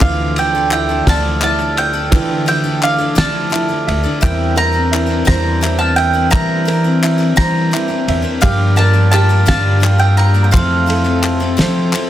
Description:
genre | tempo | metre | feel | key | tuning
indie folk with a building arrangement | 57 BPM (dotted quarters) | 6/8 | straight | unclear | A4 = 440 Hz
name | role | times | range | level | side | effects
mandolin | melody | 0.0-11.9 s | F5 to Bb5 | -18 LUFS | right 1 dB | slapback echo
glockenspiel with hard plastic mallets | second line | 0.0-11.9 s | C6 to G6 | -24 LUFS | right 4 dB | none
picked twelve-string acoustic guitar | accompaniment | 0.0-12.1 s | G2 to Bb4 | -22 LUFS | left 8 dB | none
warm grand piano | accompaniment | 0.0-12.1 s | F1 to C5 | -26 LUFS | right 6 dB | none
pedal harmonium | sustained chords | 0.0-12.1 s | D3 to Bb4 | -26 LUFS | equal | none
warm upright piano | arpeggios | 0.0-12.1 s | E3 to G5 | -23 LUFS | right 5 dB | none
upright bass | bass | 0.0-11.9 s | D2 to F3 | -16 LUFS | equal | none
cloth-damped thuddy drum kit | drums | 0.0-12.1 s | kick drum, ride cymbal, snare drum | -20 LUFS | equal | none
group handclap | percussion | 0.0-12.1 s | none | -22 LUFS | left 4 dB | none
room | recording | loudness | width
light reverb, small room reverb | dense, heavily limited modern master | -12 LUFS | side -12 dB against mid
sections
0.0-12.1 A section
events
none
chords
0.0 Dmadd9; 4.2 C7/E; 8.4 Gm7; 10.5 Fmaj7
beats
| 0.01 1.07 | 2.12 3.17 | 4.22 5.28 | 6.33 7.38 | 8.43 9.48 | 10.54 11.59

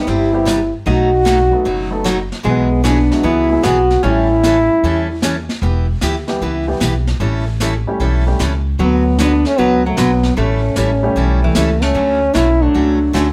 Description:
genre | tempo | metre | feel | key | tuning
country, western swing | 151 BPM | 4/4 | swing 67% on 8ths | D major | A4 = 440 Hz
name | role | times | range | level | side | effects
mellow French horn | melody | 0.0-5.5, 8.8-13.3 s | A3 to F#4 | -17 LUFS | equal | none
hollow-body jazz guitar | second line | 0.0-5.4, 8.8-13.2 s | E3 to D#4 | -24 LUFS | equal | none
warm upright piano | accompaniment | 0.0-8.4, 11.0-13.1 s | E3 to C#5 | -26 LUFS | equal | none
picked steel-string acoustic guitar | accompaniment | 0.1-13.3 s | B2 to B4 | -23 LUFS | equal | none
upright bass | bass | 0.1-13.3 s | E1 to E2 | -20 LUFS | equal | none
vintage brush drum kit | drums | 0.1-13.3 s | brushed snare drum, hi-hat, snare drum | -26 LUFS | equal | none
room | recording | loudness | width
light reverb | none | -15 LUFS | mono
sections
0.0-12.0 A section; 12.0-13.3 B section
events
none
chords
0.0 Cmaj7; 0.9 B7; 2.4 Eadd9/B; 4.0 A7; 5.6 Em; 7.2 A7; 8.8 D6; 10.4 A7; 12.0 Dmaj7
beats
0.07 0.46 | 0.86 1.26 1.66 2.05 | 2.45 2.85 3.24 3.64 | 4.04 4.43 4.83 5.23 | 5.62 6.02 6.42 6.81 | 7.21 7.60 8.00 8.40 | 8.79 9.19 9.59 9.98 | 10.38 10.77 11.17 11.56 | 11.96 12.36 12.75 13.15

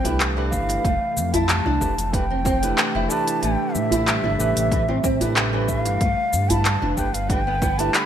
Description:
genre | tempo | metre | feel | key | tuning
organic downtempo | 93 BPM | 4/4 | straight | A minor | A4 = 443 Hz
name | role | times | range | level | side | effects
bansuri | melody | 0.0-8.1 s | E5 to B5 | -25 LUFS | equal | ping-pong delay
barky tine electric piano | accompaniment | 0.0-8.1 s | A3 to B4 | -30 LUFS | right 4 dB | sidechain pumping, ping-pong delay
airy breathy pad | sustained chords | 0.0-8.1 s | C3 to B4 | -32 LUFS | left 2 dB | chorus, sidechain pumping
nylon-string guitar | arpeggios | 0.0-7.9 s | E3 to E4 | -27 LUFS | equal | ensemble chorus, ping-pong delay
smooth gliding synth bass | bass | 0.0-7.9 s | F1 to A2 | -25 LUFS | equal | tube saturation
djembe | percussion | 0.0-7.8 s | none | -29 LUFS | right 1 dB | none
organic electronic drum kit | drums | 0.1-8.1 s | cabasa, handclaps, hi-hat | -24 LUFS | left 1 dB | none
electronic kick drum | drums | 0.5-7.8 s | none | -25 LUFS | equal | none
room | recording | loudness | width
moderate plate reverb, RT60 2.0 s, digital ambience | bright 1980s-style digital production | -19 LUFS | side -9 dB against mid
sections
0.0-8.1 A section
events
none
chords
0.0 Cmaj7; 0.8 Fmaj7; 3.4 Am7; 6.0 G7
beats
0.20 | 0.84 1.49 2.13 2.78 | 3.43 4.07 4.72 5.36 | 6.01 6.65 7.30 7.94

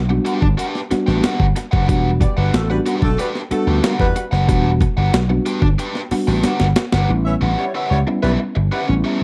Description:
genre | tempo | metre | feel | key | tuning
funk | 92 BPM | 4/4 | straight | E dorian | A4 = 440 Hz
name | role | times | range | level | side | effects
vintage slap bass | bass | 0.0-9.0 s | E1 to E2 | -20 LUFS | equal | none
biting overdriven guitar | accompaniment | 0.1-9.2 s | C#4 to G5 | -26 LUFS | equal | none
mellow tine electric piano | stabs | 0.1-9.2 s | G3 to F#4 | -25 LUFS | equal | tape echo
breakbeat sampler-style drum kit | drums | 0.3-7.1 s | hi-hat, kick drum, snare drum | -22 LUFS | equal | none
clear horn section | second line | 2.2-8.8 s | G3 to E5 | -27 LUFS | equal | none
room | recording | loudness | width
light reverb, digital ambience | dark, warm production | -18 LUFS | mono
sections
0.0-7.1 A section; 7.1-9.2 B section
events
drum fill 6.4-7.1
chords
0.0 Em9 (rootless); 7.1 A9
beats
0.59 1.24 | 1.89 2.54 3.19 3.84 | 4.49 5.14 5.79 6.44 | 7.09 7.75 8.40 9.05

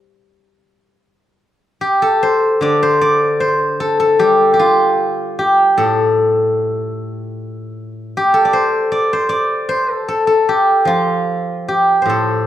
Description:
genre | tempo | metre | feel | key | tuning
chinese traditional, Chinese solo plucked strings | 76 BPM | 4/4 | rubato | D yu mode | A4 = 440 Hz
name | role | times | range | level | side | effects
steel-string zither | solo | 0.0-12.5 s | A2 to D5 | -13 LUFS | equal | none
room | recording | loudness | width
moderate recital hall reverb, RT60 1.3 s | recorded in a church or concert hall | -12 LUFS | side -11 dB against mid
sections
1.0-12.5 A section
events
none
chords
none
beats
0.13 | 0.98 1.81 2.63 3.43 | 4.22 5.00 5.79 6.58 | 7.36 8.14 8.91 9.68 | 10.47 11.26 12.07

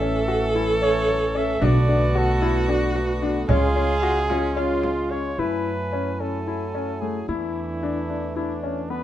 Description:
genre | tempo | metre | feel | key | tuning
contemporary instrumental, chamber music in an uneven meter | 224 BPM (eighths) | 7/8 | straight | F# minor | A4 = 442 Hz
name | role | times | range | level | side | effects
warm flugelhorn | melody | 0.0-9.0 s | D4 to E5 | -28 LUFS | right 2 dB | none
clear viola | second line | 0.0-5.1 s | C#4 to A4 | -25 LUFS | right 2 dB | none
hand-pumped harmonium | sustained chords | 0.0-9.0 s | C#3 to G#5 | -30 LUFS | equal | none
warm grand piano | arpeggios | 0.0-9.0 s | A3 to F#4 | -27 LUFS | left 5 dB | none
upright bass | bass | 0.0-9.0 s | A1 to F#2 | -26 LUFS | right 1 dB | none
frame drum | percussion | 0.6-5.1 s | none | -28 LUFS | right 2 dB | none
room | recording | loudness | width
light reverb | close, detailed microphones | -20 LUFS | side -12 dB against mid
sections
0.0-5.4 A section; 5.4-9.0 B section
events
none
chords
0.0 A; 1.6 Bm7; 3.5 C#; 5.4 F#m9; 7.3 E7sus4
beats
0.01 0.28 0.55 0.81 1.08 1.35 | 1.62 1.89 2.15 2.42 2.69 2.95 3.22 | 3.49 3.76 4.03 4.30 4.57 4.84 5.12 | 5.39 5.66 5.93 6.20 6.48 6.75 7.02 | 7.29 7.56 7.83 8.09 8.36 8.63 8.90

